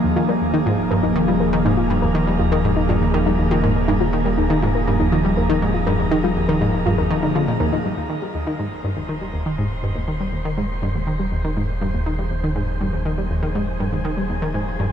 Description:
ambient, sequencer-driven space music; 121 BPM; 4/4; straight; A4 = 441 Hz
evolving wavetable pad; sustained chords; 0.0-14.9 s; C3 to Ab4; -24 LUFS; equal; chorus, built-in reverb
analog pluck; riff; 0.0-14.9 s; Eb2 to G3; -22 LUFS; equal; chorus, ping-pong delay
round analog bass; bass; 0.0-14.9 s; Eb1; -25 LUFS; equal
wind-like tuned noise texture; texture; 0.0-14.9 s; Ab4 to C6; -31 LUFS; equal; built-in reverb
soft round pluck; arpeggios; 0.2-7.8 s; Eb4 to Bb4; -26 LUFS; moving between left 6 dB and right 1 dB; chorus, auto-pan, ping-pong delay
moderate shimmer reverb, RT60 7.5 s; dark, warm production; -18 LUFS; side -8 dB against mid
0.0-8.0 A section; 8.0-14.9 B section
fade-in on ambient pad 8.0-14.9
0.0 Ebsus2
| 0.04 0.53 1.03 1.53 | 2.02 2.52 3.01 3.51 | 4.00 4.50 5.00 5.49 | 5.99 6.49 6.98 7.48 | 7.97 8.47 8.96 9.46 | 9.96 10.45 10.95 11.44 | 11.94 12.44 12.93 13.43 | 13.92 14.42 14.91

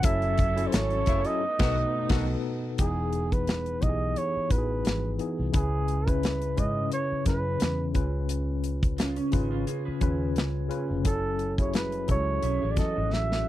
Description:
lush 1970s-style soul; 87 BPM; 4/4; swing 54% on 16ths; E major; A4 = 441 Hz
breathy flugelhorn; melody; 0.0-13.5 s; G#4 to E5; -30 LUFS; right 3 dB
mellow tine electric piano; accompaniment; 0.0-13.5 s; B2 to B4; -31 LUFS; left 3 dB; overdrive, auto-pan
rich studio string section; sustained chords; 0.0-2.8 s; F#3 to A4; -38 LUFS; right 4 dB
vintage muted fingered electric bass; bass; 0.0-13.4 s; E1 to G#2; -30 LUFS; equal
modern studio drum kit; drums; 0.0-13.5 s; crash cymbal, hi-hat, kick drum, snare drum; -27 LUFS; equal
warm horn section; stabs; 1.1-2.3 s; C#3 to F#4; -35 LUFS; left 9 dB; slapback echo
electric guitar through a small old amp; riff; 9.0-13.5 s; B3 to B4; -35 LUFS; right 4 dB; wide subtle chorus
little or no reverb; dry, close 1970s-style studio recording; -25 LUFS; side -14 dB against mid
0.0-2.8 A section; 2.8-13.5 B section
band accent 0.0-2.8; drum fill 13.1-13.5
0.0 F#m7; 1.4 B7; 2.8 Emaj7; 5.5 C#m7; 8.0 C#7; 11.0 F#m7
| 0.04 0.73 1.42 2.10 | 2.79 3.48 4.17 4.85 | 5.54 6.23 6.92 7.61 | 8.29 8.98 9.67 10.36 | 11.05 11.74 12.43 13.12

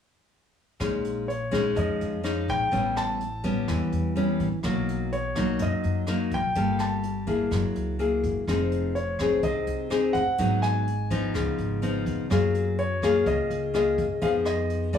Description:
bossa nova; 125 BPM; 4/4; straight; Bb minor; A4 = 440 Hz
nylon-string guitar; accompaniment; 0.8-15.0 s; F#2 to A4; -26 LUFS; left 3 dB
upright bass; bass; 0.8-15.0 s; F1 to F#2; -30 LUFS; equal
jazz brush drum kit; drums; 0.8-15.0 s; hi-hat, kick drum, rim click; -36 LUFS; equal
warm grand piano; melody; 1.3-15.0 s; Db5 to A5; -30 LUFS; right 1 dB; plate reverb
moderate studio reverb, RT60 0.7 s; studio reverb; -23 LUFS; side -8 dB against mid
0.8-15.0 A section
0.8 Bbm7; 2.7 A9; 4.6 Bmaj7; 6.6 Gm9; 7.5 Gb9; 8.5 Fm7; 10.4 Abm7; 11.3 Db9; 12.3 Gbmaj9; 14.2 Fm7b5
| 0.80 1.28 1.76 2.24 | 2.72 3.20 3.68 4.16 | 4.64 5.12 5.60 6.08 | 6.55 7.03 7.51 7.99 | 8.47 8.95 9.43 9.91 | 10.39 10.87 11.35 11.82 | 12.30 12.78 13.26 13.74 | 14.22 14.70

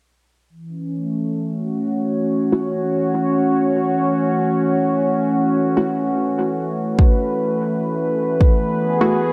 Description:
ambient dub; 74 BPM; 4/4; straight; F# minor; A4 = 440 Hz
warm analog pad; sustained chords; 0.5-9.3 s; E3 to C#5; -20 LUFS; equal; chorus
filtered dub chord stab; stabs; 2.5-9.3 s; A3 to F#4; -25 LUFS; equal; chorus, dub echo
electronic kick drum; drums; 7.0-8.6 s; -15 LUFS; equal; overdrive
moderate plate reverb, RT60 2.8 s; dreamy mix soaked in reverb; -19 LUFS; mono
0.5-9.3 A section
filter sweep on synth stab 0.5-9.3
0.5 F#m7
| 0.50 1.31 2.12 2.93 | 3.75 4.56 5.37 6.18 | 6.99 7.80 8.61

